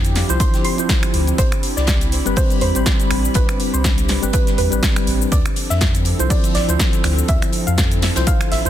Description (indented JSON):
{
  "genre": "deep house",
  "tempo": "122 BPM",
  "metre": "4/4",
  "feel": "swing 56% on 16ths",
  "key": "unclear",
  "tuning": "A4 = 440 Hz",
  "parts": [
    { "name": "hollow soft pad", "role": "sustained chords", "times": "0.0-8.7 s", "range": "F3 to B5", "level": "-29 LUFS", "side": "equal", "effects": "chorus, sidechain pumping" },
    { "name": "tine electric piano", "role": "stabs", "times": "0.0-8.7 s", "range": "F3 to C5", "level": "-24 LUFS", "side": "left 1 dB", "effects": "medium stereo tremolo, sidechain pumping" },
    { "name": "sub bass with octave", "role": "bass", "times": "0.0-8.7 s", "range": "G1 to F2", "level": "-20 LUFS", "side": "equal", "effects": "sidechain pumping" },
    { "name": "punchy analog drum machine", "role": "drums", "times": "0.0-8.7 s", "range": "finger snaps, hi-hat, shaker, snare drum", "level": "-23 LUFS", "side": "equal", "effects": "none" },
    { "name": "warbly tape-like pad", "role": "texture", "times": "0.0-8.7 s", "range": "C4 to G4", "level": "-29 LUFS", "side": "equal", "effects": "chorus, built-in reverb, sidechain pumping" },
    { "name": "big rock drum kit", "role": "drums", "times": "0.2-8.7 s", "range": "hi-hat, snare drum", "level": "-31 LUFS", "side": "left 3 dB", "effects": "high-pass filter on hats, high-pass filter on snare, high-pass filter on room" },
    { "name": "soft round pluck", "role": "melody", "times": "0.4-8.7 s", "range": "B4 to C6", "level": "-27 LUFS", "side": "right 3 dB", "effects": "chorus, digital delay" },
    { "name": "electronic kick drum", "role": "drums", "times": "0.4-8.4 s", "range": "none", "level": "-18 LUFS", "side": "equal", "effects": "none" }
  ],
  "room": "digital ambience",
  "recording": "dense, heavily limited modern master",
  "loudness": "-15 LUFS",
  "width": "side -11 dB against mid",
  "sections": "0.0-8.7 A section",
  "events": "none",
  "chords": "0.0 Dm9; 1.4 Am9; 5.3 Dm9",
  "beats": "0.40 0.89 | 1.39 1.88 2.37 2.86 | 3.35 3.84 4.33 4.83 | 5.32 5.81 6.30 6.79 | 7.29 7.78 8.27"
}